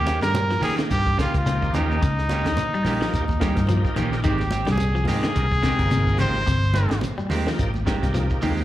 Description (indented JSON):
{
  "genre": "afrobeat",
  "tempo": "108 BPM",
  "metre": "4/4",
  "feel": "swing 56% on 16ths",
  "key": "Eb mixolydian",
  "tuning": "A4 = 440 Hz",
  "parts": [
    { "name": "bright trumpet", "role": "melody", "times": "0.0-7.0 s", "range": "Eb4 to C5", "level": "-26 LUFS", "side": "equal", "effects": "slapback echo" },
    { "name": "clean electric guitar", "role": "stabs", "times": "0.0-8.6 s", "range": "Eb3 to G4", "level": "-30 LUFS", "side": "right 6 dB", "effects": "slapback echo" },
    { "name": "fingered electric bass", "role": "bass", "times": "0.0-8.6 s", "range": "G1 to Eb3", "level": "-24 LUFS", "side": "equal", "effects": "none" },
    { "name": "compact cocktail drum kit", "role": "drums", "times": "0.1-8.6 s", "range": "hi-hat, kick drum, snare drum", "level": "-27 LUFS", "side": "equal", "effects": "none" },
    { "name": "congas", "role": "percussion", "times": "0.1-8.6 s", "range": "none", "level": "-32 LUFS", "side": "right 2 dB", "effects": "slapback echo" },
    { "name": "shekere", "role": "percussion", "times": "0.1-8.6 s", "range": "none", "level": "-32 LUFS", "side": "equal", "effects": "none" },
    { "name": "electric guitar at the edge of break-up", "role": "arpeggios", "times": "0.2-8.6 s", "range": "C3 to G3", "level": "-29 LUFS", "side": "left 4 dB", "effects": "phaser, slapback echo" },
    { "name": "overdriven tonewheel organ", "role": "accompaniment", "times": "0.6-8.6 s", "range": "F3 to G5", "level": "-32 LUFS", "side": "equal", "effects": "slow rotary speaker, chorus vibrato, slapback echo" }
  ],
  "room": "light reverb, small room ambience",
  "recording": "live gig heard through the venue's PA, club reverb",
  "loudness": "-19 LUFS",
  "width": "side -14 dB against mid",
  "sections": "0.0-8.6 A section",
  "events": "none",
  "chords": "0.0 Eb7; 4.2 Abmaj7",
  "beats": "0.34 0.90 1.46 | 2.01 2.57 3.13 3.69 | 4.25 4.80 5.36 5.92 | 6.47 7.03 7.59 8.15"
}